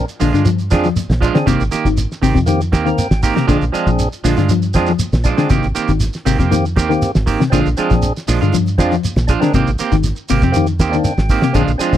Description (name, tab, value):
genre	afrobeat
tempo	119 BPM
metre	4/4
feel	straight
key	unclear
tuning	A4 = 441 Hz
part	percussive tonewheel organ	accompaniment	0.0-12.0 s	Bb3 to Bb5	-20 LUFS	right 1 dB	overdrive, stopped rotary speaker
part	fingered electric bass	bass	0.0-12.0 s	Ab1 to G2	-18 LUFS	equal	none
part	cloth-damped thuddy drum kit	drums	0.1-12.0 s	hi-hat, kick drum, snare drum	-17 LUFS	right 1 dB	none
part	shekere	percussion	0.1-12.0 s	none	-23 LUFS	right 2 dB	none
part	electric guitar at the edge of break-up	arpeggios	0.2-12.0 s	C3 to F3	-18 LUFS	left 7 dB	spring reverb
part	clean electric guitar	stabs	0.2-12.0 s	Eb3 to G4	-19 LUFS	right 7 dB	none
room	little or no reverb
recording	dry, close 1970s-style studio recording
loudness	-13 LUFS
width	side -11 dB against mid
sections	0.0-12.0 A section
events	tonewheel organ fill 2.7-3.5, 10.8-11.6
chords	0.0 Bb7; 1.5 Abmaj9; 3.5 Bb7; 5.5 Abmaj9; 7.5 Bb7; 9.5 Abmaj9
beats	0.46 0.96 | 1.47 1.97 2.48 2.98 | 3.49 3.99 4.50 5.00 | 5.50 6.01 6.51 7.02 | 7.52 8.03 8.53 9.03 | 9.54 10.04 10.54 11.05 | 11.55